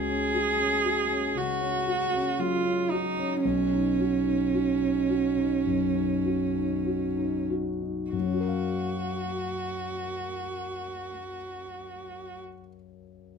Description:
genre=neoclassical piano and strings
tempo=46-60 BPM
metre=4/4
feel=rubato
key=F# major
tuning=A4 = 440 Hz
part: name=warm cello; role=second line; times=0.0-12.4 s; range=C#4 to G#4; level=-28 LUFS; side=right 5 dB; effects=none
part: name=dark concert grand piano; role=accompaniment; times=0.0-13.4 s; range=B1 to E#5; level=-30 LUFS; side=left 4 dB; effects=none
room=light reverb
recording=none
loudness=-25 LUFS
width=side -6 dB against mid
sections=0.0-8.1 A section; 8.1-13.1 B section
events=slowing down 0.0-8.1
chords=0.0 F#5/C#; 3.4 Badd9; 8.1 F#maj7

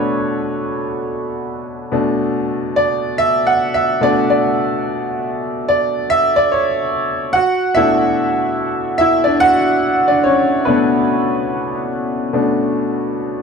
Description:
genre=R&B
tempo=72 BPM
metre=4/4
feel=swing 63% on 16ths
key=B minor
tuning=A4 = 439 Hz
part: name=clear grand piano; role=solo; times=0.0-13.4 s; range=B2 to F#5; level=-14 LUFS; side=equal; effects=none
room=wet studio ambience, RT60 0.4 s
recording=band playing live in one room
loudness=-14 LUFS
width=side -5 dB against mid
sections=0.0-7.3 A section; 7.3-13.4 B section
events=grand piano solo 0.0-7.3, 7.3-13.4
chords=0.0 Bm7

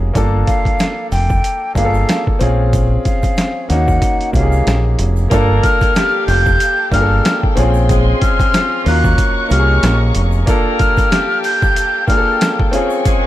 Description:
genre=hip hop, boom-bap hip-hop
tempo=93 BPM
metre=4/4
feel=swing 56% on 16ths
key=G minor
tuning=A4 = 440 Hz
part: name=warm upright piano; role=accompaniment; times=0.0-13.3 s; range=Gb3 to A4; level=-19 LUFS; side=equal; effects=cassette tape, high-pass filter, low-pass filter
part: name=deep dub fingered electric bass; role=bass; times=0.0-10.4 s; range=F1 to Eb2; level=-14 LUFS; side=equal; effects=none
part: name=boom bap sampler-style drum kit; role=drums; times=0.2-13.2 s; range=hi-hat, kick drum, rim click, snare drum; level=-16 LUFS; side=equal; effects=overdrive
part: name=tube shaker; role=percussion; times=0.2-13.2 s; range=none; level=-40 LUFS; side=right 4 dB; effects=none
part: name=breathy jazz flute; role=melody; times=0.5-12.6 s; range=F5 to G6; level=-18 LUFS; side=left 1 dB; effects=high-pass filter, low-pass filter, analog delay
part: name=warm studio string section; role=sustained chords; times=5.3-13.3 s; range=Eb4 to Db6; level=-25 LUFS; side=left 3 dB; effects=high-pass filter, low-pass filter
part: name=clear saxophone section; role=stabs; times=5.3-13.3 s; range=F3 to Bb4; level=-22 LUFS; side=equal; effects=high-pass filter, low-pass filter, analog delay
room=little or no reverb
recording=dry, gritty hardware recording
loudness=-12 LUFS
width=side -14 dB against mid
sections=0.0-5.3 A section; 5.3-13.3 B section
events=none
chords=0.2 Gm9; 2.4 Bbm9; 3.7 Ebm9; 5.3 Gm9; 7.6 Bbm9; 8.9 Ebm9; 10.5 Gm9; 12.7 Bbm9

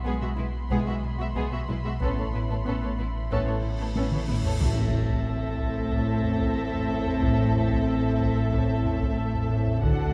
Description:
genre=cinematic, suspense film score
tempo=92 BPM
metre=4/4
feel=straight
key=A minor from 4.6 s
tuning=A4 = 440 Hz
part: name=concert harp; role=riff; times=0.0-10.1 s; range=A2 to B3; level=-33 LUFS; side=equal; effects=none
part: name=sub bass with octave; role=drone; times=0.0-10.1 s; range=A1 to B1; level=-35 LUFS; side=equal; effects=none
part: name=timpani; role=percussion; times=0.0-0.3, 4.6-5.6 s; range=A2 to B2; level=-37 LUFS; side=equal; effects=none
part: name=muted studio violin section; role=texture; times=0.0-9.5 s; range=B5 to Bb6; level=-45 LUFS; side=equal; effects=none
part: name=muted studio violin section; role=melody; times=0.1-10.1 s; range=G#4 to F#5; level=-41 LUFS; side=equal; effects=none
part: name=muted studio violin section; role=second line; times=0.1-10.1 s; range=B3 to A4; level=-37 LUFS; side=equal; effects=none
part: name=muted studio viola section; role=accompaniment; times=0.1-10.1 s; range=G#3 to D4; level=-39 LUFS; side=equal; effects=none
part: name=muted studio double bass section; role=bass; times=0.1-10.1 s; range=A1 to D2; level=-35 LUFS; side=equal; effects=none
part: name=muted symphonic cello section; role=bass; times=0.1-10.1 s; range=A2 to D3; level=-35 LUFS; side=equal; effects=none
part: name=dark French horn section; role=sustained chords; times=0.7-10.1 s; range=G#3 to F#4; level=-34 LUFS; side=equal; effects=none
part: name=solo taiko drums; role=drums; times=0.7-10.1 s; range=none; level=-34 LUFS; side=equal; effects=none
part: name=cymbal swell and impact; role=sound effects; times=3.8-7.2 s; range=none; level=-39 LUFS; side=equal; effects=none
room=wet concert hall reverb, RT60 2.2 s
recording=dark, warm production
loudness=-26 LUFS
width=mono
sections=0.0-4.6 A section; 4.6-10.1 B section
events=cymbal swell 3.8-4.6; drum fill 4.0-4.6; impact 4.6-7.2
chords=0.0 E/B; 2.0 Aadd9; 4.6 Am

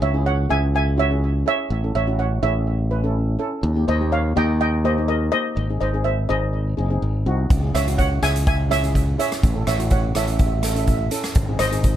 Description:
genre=calypso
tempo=124 BPM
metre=4/4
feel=swing 53% on 16ths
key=C# minor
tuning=A4 = 440 Hz
part: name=steel pan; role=melody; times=0.0-12.0 s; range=A#4 to G#5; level=-24 LUFS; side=right 2 dB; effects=digital delay
part: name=steel pan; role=accompaniment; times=0.0-11.9 s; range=A#3 to B4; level=-28 LUFS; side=left 1 dB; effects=none
part: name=modern bright fingered electric bass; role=bass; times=0.0-12.0 s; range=F#1 to D#2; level=-21 LUFS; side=equal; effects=none
part: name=street-band drum kit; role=drums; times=7.5-12.0 s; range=hi-hat, kick drum, rim click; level=-21 LUFS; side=equal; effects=none
room=light reverb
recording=none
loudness=-18 LUFS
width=side -11 dB against mid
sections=0.0-12.0 A section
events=none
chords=0.0 C#m; 1.7 A; 3.6 D#; 5.6 G#; 7.5 C#m; 9.4 A; 11.4 G#

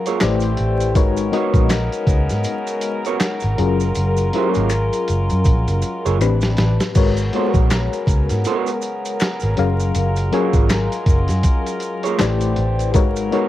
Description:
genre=R&B, neo-soul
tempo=80 BPM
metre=4/4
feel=swing 58% on 16ths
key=G# dorian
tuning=A4 = 440 Hz
part: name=FM electric piano with tremolo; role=accompaniment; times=0.0-13.5 s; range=A2 to G#5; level=-22 LUFS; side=left 6 dB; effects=cassette tape
part: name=muted French horn section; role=sustained chords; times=0.0-13.5 s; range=C3 to B4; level=-25 LUFS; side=equal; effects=cassette tape
part: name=electric guitar through a small old amp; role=second line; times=0.1-13.5 s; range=A#3 to C#5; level=-22 LUFS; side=right 8 dB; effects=cassette tape
part: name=lo-fi sampler-style drum kit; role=drums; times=0.1-13.5 s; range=crash cymbal, handclaps, hi-hat, kick drum, snare drum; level=-19 LUFS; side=equal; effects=cassette tape
part: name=maracas and finger snaps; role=percussion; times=0.1-13.3 s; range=none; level=-34 LUFS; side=equal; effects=none
part: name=vintage muted fingered electric bass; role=bass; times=0.2-13.3 s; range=F#1 to G#2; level=-19 LUFS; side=equal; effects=tube saturation
room=light reverb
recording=home recording on cassette, vinyl crackle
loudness=-16 LUFS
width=side -14 dB against mid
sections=0.0-7.0 A section; 7.0-13.5 A section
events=drum fill 4.0-7.0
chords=0.2 Am11; 1.0 G#m11; 3.6 F#maj9; 6.2 Am11; 7.0 G#m11; 9.6 F#maj9; 12.2 Am11; 13.0 G#m11

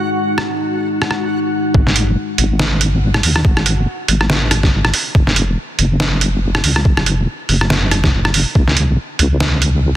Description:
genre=deep dubstep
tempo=141 BPM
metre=4/4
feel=swing 58% on 16ths, half-time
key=unclear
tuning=A4 = 440 Hz
part: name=deep dark ambient pad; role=sustained chords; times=0.0-1.8 s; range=G#3 to D#4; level=-21 LUFS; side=left 3 dB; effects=chorus, built-in reverb, vintage 12-bit sampler grit
part: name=backwards swelling texture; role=texture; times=0.0-1.8 s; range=F#4 to F#5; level=-25 LUFS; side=right 2 dB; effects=built-in reverb
part: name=trip hop sampler-style drum kit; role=drums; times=0.4-9.7 s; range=hi-hat, rim click, snare drum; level=-17 LUFS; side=right 1 dB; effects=soft clipping on snare
part: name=deep soft wobble bass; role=bass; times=1.7-10.0 s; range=E1 to D#2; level=-15 LUFS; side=equal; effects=chorus
part: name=electronic kick drum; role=drums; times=1.7-8.7 s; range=none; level=-13 LUFS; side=equal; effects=none
room=digital ambience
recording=dense, heavily limited modern master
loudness=-13 LUFS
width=side -13 dB against mid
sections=0.0-1.7 A section; 1.7-10.0 B section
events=drop 1.7-10.0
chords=0.0 G#5; 5.1 F#5; 8.6 C#5

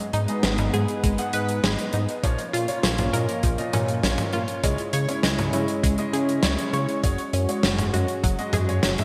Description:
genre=synthwave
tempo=100 BPM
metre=4/4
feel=straight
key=G# minor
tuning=A4 = 440 Hz
part: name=warm analog pad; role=sustained chords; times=0.0-9.0 s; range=G#3 to C#5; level=-32 LUFS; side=equal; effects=chorus, sidechain pumping
part: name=analog pluck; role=arpeggios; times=0.0-9.0 s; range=E#3 to C#5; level=-32 LUFS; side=equal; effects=chorus, phaser, digital delay
part: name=chorused synth bass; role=bass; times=0.1-9.0 s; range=F#1 to C#3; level=-28 LUFS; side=equal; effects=none
part: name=big rock drum kit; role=drums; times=0.1-9.0 s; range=hi-hat, snare drum, toms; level=-29 LUFS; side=equal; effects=gated reverb
part: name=warm grand piano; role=stabs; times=0.3-9.0 s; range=G#2 to F#5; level=-34 LUFS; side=equal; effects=subtle chorus, digital delay
part: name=electronic kick drum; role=drums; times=1.0-8.4 s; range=none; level=-26 LUFS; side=equal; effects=none
room=wet lush hall reverb, RT60 2.1 s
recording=bright 1980s-style digital production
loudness=-24 LUFS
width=mono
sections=0.0-9.0 A section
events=none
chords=0.0 G#m; 2.2 A#m; 4.6 C#m; 7.0 F#sus2

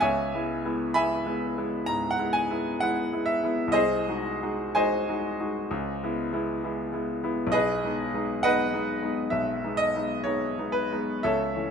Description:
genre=classical, romantic character piece for solo piano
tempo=65 BPM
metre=4/4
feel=rubato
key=G# minor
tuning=A4 = 440 Hz
part: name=clear grand piano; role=solo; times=0.0-11.7 s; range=B1 to B5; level=-25 LUFS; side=equal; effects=none
room=moderate recital hall reverb, RT60 1.4 s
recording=close, detailed microphones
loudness=-25 LUFS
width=side -6 dB against mid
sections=0.0-11.7 A section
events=none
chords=0.0 C#m7; 3.8 G#7/B#; 5.7 C#m7; 7.5 G#m/B

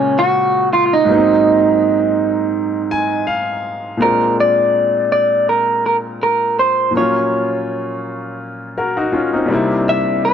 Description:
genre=soul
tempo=82 BPM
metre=4/4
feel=swing 54% on 16ths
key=unclear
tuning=A4 = 440 Hz
part: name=electric guitar through a small old amp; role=melody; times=0.0-10.3 s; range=Db4 to E5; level=-14 LUFS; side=right 2 dB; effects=none
part: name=clear baby grand piano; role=accompaniment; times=0.0-10.3 s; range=Ab2 to Ab5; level=-19 LUFS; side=left 2 dB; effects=none
room=light reverb, small room reverb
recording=none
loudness=-13 LUFS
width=side -8 dB against mid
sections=0.0-4.0 A section; 4.0-10.3 B section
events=grand piano fill 2.5-4.0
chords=0.0 Bbm7; 1.1 Ab7; 4.0 Bb7; 6.9 Ebm9/Bb; 9.5 C7

